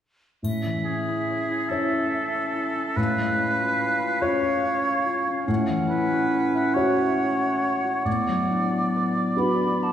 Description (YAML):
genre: cinematic, emotional film score for orchestra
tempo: 47 BPM (dotted quarters)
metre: 6/8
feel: rubato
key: A major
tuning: A4 = 440 Hz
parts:
  - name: mellow concert flute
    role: second line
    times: 0.4-9.9 s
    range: E5 to B5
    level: -30 LUFS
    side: equal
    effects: none
  - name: warm clarinet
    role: second line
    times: 0.4-9.9 s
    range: B3 to C#4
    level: -30 LUFS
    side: left 1 dB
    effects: none
  - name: dark baby grand piano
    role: accompaniment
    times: 0.4-9.9 s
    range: A2 to C#5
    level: -28 LUFS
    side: left 1 dB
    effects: none
  - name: concert harp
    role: arpeggios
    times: 0.4-9.9 s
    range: A2 to F#5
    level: -29 LUFS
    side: left 1 dB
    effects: none
  - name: triangle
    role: percussion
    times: 0.4-2.1 s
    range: none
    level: -46 LUFS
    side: equal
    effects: none
  - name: warm oboe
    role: second line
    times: 0.9-9.9 s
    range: G#4 to D5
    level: -26 LUFS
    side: right 2 dB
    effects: none
room: wet scoring stage reverb, RT60 1.8 s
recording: heard from further back in the room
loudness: -21 LUFS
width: side -10 dB against mid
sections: 0.4-9.9 A section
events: none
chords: 0.4 A; 3.0 C#7/A; 5.5 F#m7/A; 8.1 Bm/A